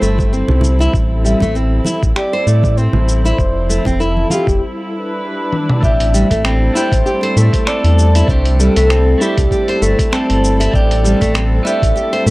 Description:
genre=organic downtempo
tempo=98 BPM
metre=4/4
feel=swing 56% on 16ths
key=A minor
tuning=A4 = 440 Hz
part: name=breathy flute-like synth lead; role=melody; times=0.0-12.2 s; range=G4 to E5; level=-21 LUFS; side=equal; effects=wide subtle chorus, analog delay
part: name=warm chamber string section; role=sustained chords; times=0.0-12.3 s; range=F3 to B4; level=-22 LUFS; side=left 1 dB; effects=sidechain pumping
part: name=nylon-string guitar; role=arpeggios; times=0.0-12.3 s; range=G3 to C5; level=-19 LUFS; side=equal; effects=analog delay
part: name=round analog bass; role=bass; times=0.0-12.3 s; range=F1 to A2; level=-14 LUFS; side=equal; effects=sidechain pumping
part: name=dusty soul sampler-style drum kit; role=drums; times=0.0-12.3 s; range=finger snaps, hi-hat, shaker, toms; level=-22 LUFS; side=equal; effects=overdrive
part: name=electronic kick drum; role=drums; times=0.2-11.9 s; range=none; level=-17 LUFS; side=equal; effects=overdrive
part: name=congas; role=percussion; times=0.2-4.4 s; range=none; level=-21 LUFS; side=right 2 dB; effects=none
part: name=clean electric guitar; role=accompaniment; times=5.8-12.3 s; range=A3 to A4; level=-23 LUFS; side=right 1 dB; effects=phaser, sidechain pumping, analog delay
room=little or no reverb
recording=dry, gritty hardware recording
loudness=-11 LUFS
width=side -20 dB against mid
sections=0.0-5.8 A section; 5.8-12.3 B section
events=break 4.6-5.8; drum fill 5.5-5.8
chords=0.0 C6; 0.9 Am7; 3.4 Fmaj7; 4.6 Em7; 5.8 Am7; 8.3 C6; 10.7 Am7

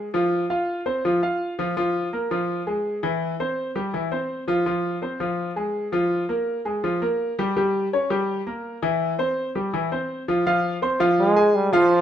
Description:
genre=latin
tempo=166 BPM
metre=4/4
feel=straight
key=F harmonic minor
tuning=A4 = 440 Hz
part: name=clear grand piano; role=accompaniment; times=0.0-12.0 s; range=E3 to C6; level=-22 LUFS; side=equal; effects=none
part: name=bright trombone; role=melody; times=11.2-12.0 s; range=F3 to Ab3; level=-18 LUFS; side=right 2 dB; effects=none
room=wet studio reverb, RT60 0.8 s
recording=minimal, uncompressed stereo recording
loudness=-21 LUFS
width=side -10 dB against mid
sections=0.0-10.5 A section; 10.5-12.0 B section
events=trombone solo 10.5-12.0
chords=0.3 Csus4; 1.8 Fmmaj7; 3.2 C; 4.7 Fm; 6.1 Bb5; 7.6 Gdim; 9.0 C; 10.5 Fm

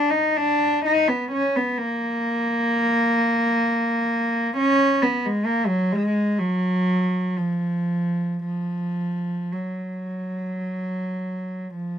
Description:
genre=classical, free, expressive piece for unaccompanied cello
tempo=49-67 BPM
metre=4/4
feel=rubato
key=F# major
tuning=A4 = 438 Hz
part: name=warm cello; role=solo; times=0.0-12.0 s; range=E#3 to D#4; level=-20 LUFS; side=equal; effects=none
room=little or no reverb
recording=close, detailed microphones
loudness=-20 LUFS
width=side -9 dB against mid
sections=0.0-12.0 A section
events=none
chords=none

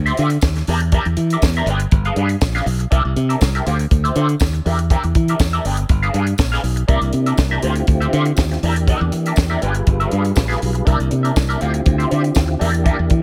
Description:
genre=disco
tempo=121 BPM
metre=4/4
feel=straight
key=D minor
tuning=A4 = 440 Hz
part: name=modern bright fingered electric bass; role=bass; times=0.0-13.2 s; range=G1 to E3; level=-20 LUFS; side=equal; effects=none
part: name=clean electric guitar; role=accompaniment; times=0.1-13.1 s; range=D4 to G5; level=-25 LUFS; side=equal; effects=wah, phaser
part: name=tight funk drum kit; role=drums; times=0.1-13.2 s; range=hi-hat, kick drum, snare drum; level=-21 LUFS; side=equal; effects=none
part: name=tambourine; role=percussion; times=0.4-12.5 s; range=none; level=-36 LUFS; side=equal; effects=none
part: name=percussive tonewheel organ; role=sustained chords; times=6.9-13.2 s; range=C3 to B4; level=-27 LUFS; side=equal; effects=chorus vibrato, fast rotary speaker
room=small room ambience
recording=none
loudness=-17 LUFS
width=mono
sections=0.0-13.2 A section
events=none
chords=0.0 Dm11; 0.7 Em7b5; 1.7 G7b9; 2.9 C9; 3.7 Dm11; 4.7 Em7b5; 5.6 G7b9; 6.9 C9; 7.6 Dm11; 8.6 Em7b5; 9.6 G7b9; 10.9 C9; 11.6 Dm11; 12.6 Em7b5

